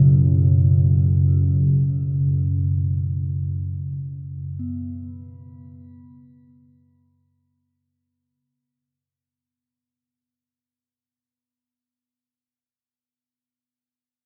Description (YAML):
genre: ambient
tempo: free time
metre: none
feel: none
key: unclear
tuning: A4 = 440 Hz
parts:
  - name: bronze singing bowl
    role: arpeggios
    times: 0.0-12.1 s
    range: B2 to B3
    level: -32 LUFS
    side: equal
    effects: delay
  - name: deep rumbling drone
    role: drone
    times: 0.0-8.2 s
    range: F#2 to C#3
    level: -21 LUFS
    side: equal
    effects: built-in reverb, phaser
room: moderate huge ambient reverb, RT60 8.0 s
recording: none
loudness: -20 LUFS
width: mono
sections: 0.0-8.1 A section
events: fade-out on singing bowl 0.0-8.1; fade-out 1.4-8.1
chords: 0.0 F#5